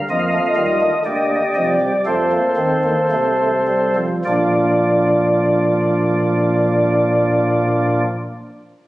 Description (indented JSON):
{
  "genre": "classical, baroque-style 4-part fugue for pipe organ",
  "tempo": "51-65 BPM",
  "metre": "4/4",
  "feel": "straight",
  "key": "Bb major",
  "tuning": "A4 = 440 Hz",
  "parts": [
    { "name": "pipe organ, flutes", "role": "solo", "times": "0.1-8.0 s", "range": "Bb1 to F5", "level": "-15 LUFS", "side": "equal", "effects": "none" }
  ],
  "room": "wet recital hall reverb, RT60 1.4 s",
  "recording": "recorded on a phone in the room, studio reverb, compression",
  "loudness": "-14 LUFS",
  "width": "side -17 dB against mid",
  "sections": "0.0-4.3 A section; 4.3-8.9 B section",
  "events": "slowing down 0.0-4.3",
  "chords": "0.0 F7sus4; 2.1 F7; 4.3 Bb"
}